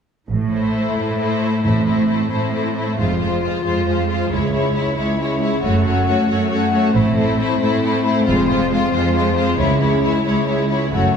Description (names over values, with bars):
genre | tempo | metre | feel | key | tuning
cinematic, heroic adventure film score | 90 BPM (dotted quarters) | 6/8 | straight | A harmonic minor | A4 = 439 Hz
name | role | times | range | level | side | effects
rich symphonic cello section | bass | 0.3-11.2 s | C#2 to A2 | -22 LUFS | right 3 dB | none
rich symphonic double bass section | bass | 0.3-11.2 s | F1 to C#2 | -23 LUFS | right 3 dB | none
rich symphonic violin section | melody | 0.5-11.2 s | C5 to C#5 | -27 LUFS | left 4 dB | none
rich symphonic violin section | second line | 0.5-11.1 s | E4 to F#4 | -23 LUFS | left 4 dB | none
warm symphonic viola section | accompaniment | 0.5-11.1 s | Ab3 to A3 | -21 LUFS | equal | none
timpani | percussion | 1.6-2.3 s | A2 | -25 LUFS | equal | none
mellow French horn section | sustained chords | 1.7-11.2 s | Ab3 to F4 | -24 LUFS | left 3 dB | none
room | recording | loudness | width
wet scoring stage reverb, RT60 1.4 s | heard from further back in the room | -16 LUFS | side -7 dB against mid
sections
0.3-1.6 A section; 1.6-11.2 B section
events
build-up 1.6-11.2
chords
0.3 Am; 3.0 Fm; 4.3 C#m; 5.6 F#m; 6.9 Am; 8.3 Fm; 9.6 C#m